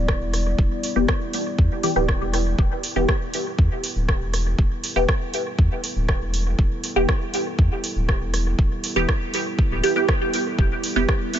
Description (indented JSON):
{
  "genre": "dub techno",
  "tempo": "120 BPM",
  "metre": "4/4",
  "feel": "straight",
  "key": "E minor",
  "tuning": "A4 = 440 Hz",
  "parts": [
    { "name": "dark analog pad", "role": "sustained chords", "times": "0.0-11.4 s", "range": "G3 to D5", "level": "-32 LUFS", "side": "equal", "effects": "chorus, sidechain pumping" },
    { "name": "warm sub bass", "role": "bass", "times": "0.0-11.1 s", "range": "D1 to E2", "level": "-23 LUFS", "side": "equal", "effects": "sidechain pumping" },
    { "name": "electronic kick drum", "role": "drums", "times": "0.1-11.2 s", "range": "none", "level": "-21 LUFS", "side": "equal", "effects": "overdrive" },
    { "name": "punchy analog drum machine", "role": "drums", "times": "0.1-11.4 s", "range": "hi-hat, rim click", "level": "-29 LUFS", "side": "right 1 dB", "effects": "dub echo" },
    { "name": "filtered dub chord stab", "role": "stabs", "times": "1.0-11.1 s", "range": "E3 to G4", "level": "-25 LUFS", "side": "equal", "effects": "phaser, sidechain pumping, dub echo" }
  ],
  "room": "little or no reverb",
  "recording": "nothing above 7.8 kHz",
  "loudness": "-19 LUFS",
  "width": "side -10 dB against mid",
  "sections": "0.0-11.4 A section",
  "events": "filter sweep on synth stab 0.0-11.4",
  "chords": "0.0 Em"
}